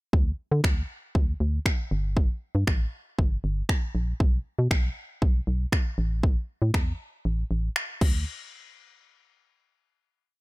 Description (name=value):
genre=dance-pop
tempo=118 BPM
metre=4/4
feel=straight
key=unclear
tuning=A4 = 442 Hz
part: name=organ-like FM bass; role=bass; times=0.1-8.2 s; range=G1 to D3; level=-26 LUFS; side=equal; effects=sidechain pumping
part: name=pop drum kit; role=drums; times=0.1-8.1 s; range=crash cymbal, finger snaps, kick drum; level=-24 LUFS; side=equal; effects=overdrive
room=little or no reverb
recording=none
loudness=-24 LUFS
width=side -21 dB against mid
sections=0.1-8.3 verse; 8.3-10.3 final hit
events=kick muted 7.3-8.3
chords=none